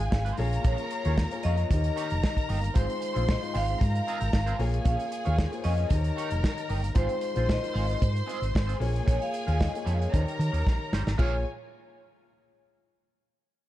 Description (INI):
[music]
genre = disco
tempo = 114 BPM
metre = 4/4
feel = straight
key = Bb dorian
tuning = A4 = 438 Hz
[part]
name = vibraphone with soft mallets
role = melody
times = 0.0-11.4 s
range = C5 to F5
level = -35 LUFS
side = left 1 dB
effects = none
[part]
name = warm studio violin section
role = second line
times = 0.0-11.4 s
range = F4 to C6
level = -36 LUFS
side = equal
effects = none
[part]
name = dark baby grand piano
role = accompaniment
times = 0.0-11.4 s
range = Bb2 to Db5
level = -36 LUFS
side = left 4 dB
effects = none
[part]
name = electric guitar at the edge of break-up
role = accompaniment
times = 0.0-11.4 s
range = G3 to Eb5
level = -40 LUFS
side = right 7 dB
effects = wah, wide subtle chorus
[part]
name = hollow-body short-scale fingered electric bass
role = bass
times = 0.0-11.4 s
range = F1 to Eb3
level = -27 LUFS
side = equal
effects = none
[part]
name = warm soul drum kit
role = drums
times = 0.1-11.3 s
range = crash cymbal, hi-hat, kick drum, snare drum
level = -28 LUFS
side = equal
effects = none
[sound]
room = little or no reverb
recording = dark, warm production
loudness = -25 LUFS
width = side -14 dB against mid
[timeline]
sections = 0.0-11.2 A section; 11.2-13.3 B section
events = drum fill 10.7-11.2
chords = 0.4 Bbm7; 1.7 Eb7; 2.7 Ab6; 4.6 Bbm7; 5.9 Eb7; 7.0 Ab6; 8.8 Bbm7; 10.1 Eb7; 11.2 Bbm7